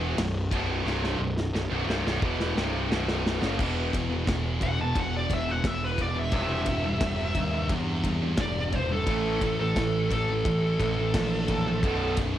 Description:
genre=heavy metal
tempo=88 BPM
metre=4/4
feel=straight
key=unclear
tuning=A4 = 440 Hz
part: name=high-gain distorted guitar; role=riff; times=0.0-12.4 s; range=B1 to A3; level=-33 LUFS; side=right 7 dB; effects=distortion, cassette tape
part: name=high-gain distorted guitar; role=riff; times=0.0-12.4 s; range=B1 to A3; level=-34 LUFS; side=left 1 dB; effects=distortion, cassette tape
part: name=tight distorted guitar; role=riff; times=0.0-12.4 s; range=B1 to A3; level=-35 LUFS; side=left 8 dB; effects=distortion, cassette tape
part: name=fuzz picked electric bass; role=bass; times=0.0-12.4 s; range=B0 to E2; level=-30 LUFS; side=equal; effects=overdrive
part: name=big rock drum kit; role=drums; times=0.2-12.3 s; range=crash cymbal, kick drum, ride cymbal, snare drum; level=-32 LUFS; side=equal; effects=cassette tape
part: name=high-gain lead guitar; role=melody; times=4.6-12.1 s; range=A4 to A5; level=-30 LUFS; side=right 1 dB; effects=distortion
room=light reverb, small room ambience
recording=home recording on cassette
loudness=-24 LUFS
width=side -12 dB against mid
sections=0.0-3.6 A section; 3.6-12.4 B section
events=drum fill 0.9-3.6; lead electric guitar solo 3.6-12.4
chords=0.0 B5; 3.6 E5; 6.3 C/E; 9.1 A5; 11.8 B5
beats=0.18 | 0.86 1.54 2.22 2.91 | 3.59 4.27 4.96 5.64 | 6.33 7.01 7.70 8.39 | 9.07 9.76 10.45 11.14 | 11.83

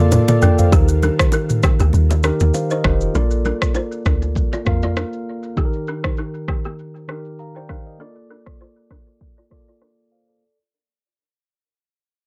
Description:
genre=afrobeats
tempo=99 BPM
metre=4/4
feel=swing 55% on 16ths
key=Bb major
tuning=A4 = 438 Hz
part: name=mellow tine electric piano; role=accompaniment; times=0.0-10.6 s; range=Eb3 to Bb5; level=-25 LUFS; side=equal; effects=plate reverb
part: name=ethereal airy pad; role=sustained chords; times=0.0-0.7 s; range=D3 to A4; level=-36 LUFS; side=equal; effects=none
part: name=deep log drum bass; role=bass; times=0.0-5.0 s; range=F1 to F2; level=-19 LUFS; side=equal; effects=none
part: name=afro-pop drum kit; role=drums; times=0.1-10.4 s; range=kick drum, rim click, shaker, toms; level=-20 LUFS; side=equal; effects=none
part: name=bongos and congas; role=percussion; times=0.1-5.1 s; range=none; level=-29 LUFS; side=equal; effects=none
part: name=balafon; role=riff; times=0.4-9.9 s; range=Bb3 to D5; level=-28 LUFS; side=equal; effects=tape echo
room=light reverb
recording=low-pass filter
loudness=-18 LUFS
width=mono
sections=0.7-10.4 A section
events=drum fill 0.0-0.7; fade-out 0.7-10.4; filter sweep 0.7-10.4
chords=0.0 Bbmaj7; 0.7 Eb; 3.1 Bbmaj7; 5.6 Eb; 8.0 Bbmaj7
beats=0.12 | 0.72 1.33 1.94 2.54 | 3.15 3.75 4.36 4.96 | 5.57 6.18 6.78 7.39 | 8.00 8.60 9.21 9.81

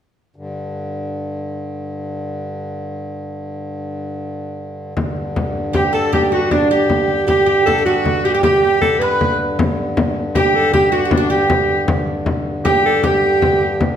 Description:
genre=medieval dance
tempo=104 BPM (dotted quarters)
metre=6/8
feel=straight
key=G major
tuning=A4 = 440 Hz
part: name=hand-pumped harmonium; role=drone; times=0.4-14.0 s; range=G2 to D3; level=-24 LUFS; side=left 1 dB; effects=none
part: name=frame drum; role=percussion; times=5.0-14.0 s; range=none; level=-20 LUFS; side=left 2 dB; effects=none
part: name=breathy alto saxophone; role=melody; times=5.7-13.8 s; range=D4 to B4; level=-17 LUFS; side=right 1 dB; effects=none
part: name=oud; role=second line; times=5.7-13.8 s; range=D4 to B4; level=-20 LUFS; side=right 4 dB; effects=none
part: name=bright shawm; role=second line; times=5.8-13.8 s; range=D4 to B4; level=-20 LUFS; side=left 5 dB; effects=none
room=wet recital hall reverb, RT60 1.3 s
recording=none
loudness=-14 LUFS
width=side -9 dB against mid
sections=0.4-5.0 A section; 5.0-14.0 B section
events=none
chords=none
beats=| 0.36 0.94 | 1.51 2.09 | 2.67 3.25 | 3.82 4.40 | 4.97 5.55 | 6.13 6.70 | 7.28 7.86 | 8.43 9.01 | 9.58 10.16 | 10.73 11.31 | 11.88 12.46 | 13.03 13.61

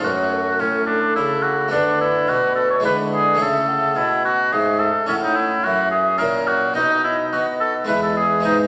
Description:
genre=classical, baroque-style sonata movement with continuo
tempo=107 BPM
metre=3/4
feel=straight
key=A major, E major from 5.1 s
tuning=A4 = 445 Hz
part: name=mellow baroque flute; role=melody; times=0.0-8.7 s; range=A4 to F#5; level=-26 LUFS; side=equal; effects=none
part: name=warm oboe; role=second line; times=0.0-8.6 s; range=C#4 to C#5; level=-21 LUFS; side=equal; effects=none
part: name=harpsichord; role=accompaniment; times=0.0-8.7 s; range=E2 to E4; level=-27 LUFS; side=equal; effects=none
part: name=warm bassoon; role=bass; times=0.0-8.7 s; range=E2 to B3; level=-31 LUFS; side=equal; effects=none
room=wet recital hall reverb, RT60 1.6 s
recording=none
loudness=-19 LUFS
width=mono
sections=0.0-8.7 A section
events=none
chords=0.0 F#m; 1.7 Bm7/D; 2.9 E7/D; 3.4 A; 5.1 F#m7/A; 6.2 F#7/A#; 6.8 B; 7.9 E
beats=| 0.04 0.61 1.17 | 1.73 2.29 2.85 | 3.41 3.97 4.53 | 5.09 5.66 6.22 | 6.78 7.34 7.90 | 8.46

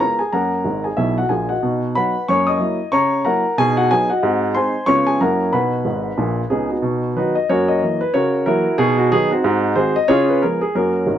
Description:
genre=jazz, stride piano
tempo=184 BPM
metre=4/4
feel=swing 60% on 8ths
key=B major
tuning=A4 = 438 Hz
part: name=warm upright piano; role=solo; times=0.0-11.2 s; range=G#1 to D#6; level=-16 LUFS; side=equal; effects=none
room=light reverb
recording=none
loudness=-16 LUFS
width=side -10 dB against mid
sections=0.0-6.8 A section; 6.8-11.2 A section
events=upright piano fill 0.7-1.6, 5.8-6.8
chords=0.3 F#; 1.6 B; 2.3 F#7; 2.9 F#7/C#; 3.6 B; 4.2 G#7; 4.9 C#7; 5.2 F#7; 5.5 B; 7.5 F#7; 8.1 F#7/C#; 8.8 B; 9.4 G#7; 10.1 C#7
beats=0.00 | 0.33 0.65 0.97 1.30 | 1.62 1.95 2.27 2.60 | 2.92 3.25 3.57 3.90 | 4.22 4.55 4.87 5.20 | 5.52 5.85 6.17 6.50 | 6.83 7.15 7.48 7.80 | 8.13 8.46 8.78 9.11 | 9.43 9.76 10.09 10.41 | 10.74 11.06

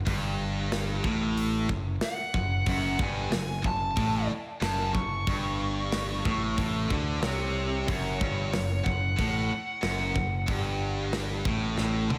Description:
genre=heavy metal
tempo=92 BPM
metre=4/4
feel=straight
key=unclear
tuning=A4 = 441 Hz
part: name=overdriven picked electric bass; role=bass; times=0.0-12.2 s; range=F#1 to D2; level=-34 LUFS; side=equal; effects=none
part: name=distorted electric guitar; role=riff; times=0.1-12.2 s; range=F#2 to D3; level=-34 LUFS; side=equal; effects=distortion
part: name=heavy high-gain guitar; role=riff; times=0.1-12.2 s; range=F#2 to D3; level=-38 LUFS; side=equal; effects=distortion, slapback echo
part: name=tight metal drum kit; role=drums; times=0.1-12.2 s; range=hi-hat, kick drum, snare drum, toms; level=-35 LUFS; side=equal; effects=none
part: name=bluesy overdriven lead guitar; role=melody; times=2.0-12.2 s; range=C#5 to C#6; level=-35 LUFS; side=equal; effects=distortion, slapback echo, tape echo
room=moderate lush hall reverb, RT60 2.0 s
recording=big arena sound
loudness=-29 LUFS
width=mono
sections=0.0-12.2 A section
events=drum fill 11.8-12.2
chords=0.0 F#m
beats=| 0.06 0.71 1.36 2.02 | 2.67 3.32 3.97 4.62 | 5.27 5.92 6.57 7.22 | 7.88 8.53 9.18 9.83 | 10.48 11.13 11.78

